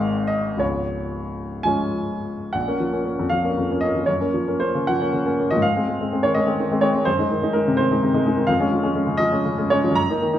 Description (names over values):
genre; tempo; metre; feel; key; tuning
classical, romantic character piece for solo piano; 56-88 BPM (dotted quarters); 6/8; rubato; Db major; A4 = 444 Hz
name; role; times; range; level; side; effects
clear grand piano; solo; 0.0-10.4 s; Db1 to Bb5; -19 LUFS; equal; none
room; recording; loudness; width
wet recital hall reverb, RT60 1.4 s; none; -19 LUFS; side -11 dB against mid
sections
0.0-2.5 A section; 2.5-10.4 A section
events
none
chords
0.0 Ab; 0.6 Db; 2.5 Bbm; 4.1 Gbmaj7; 5.6 Ab; 8.5 Db/F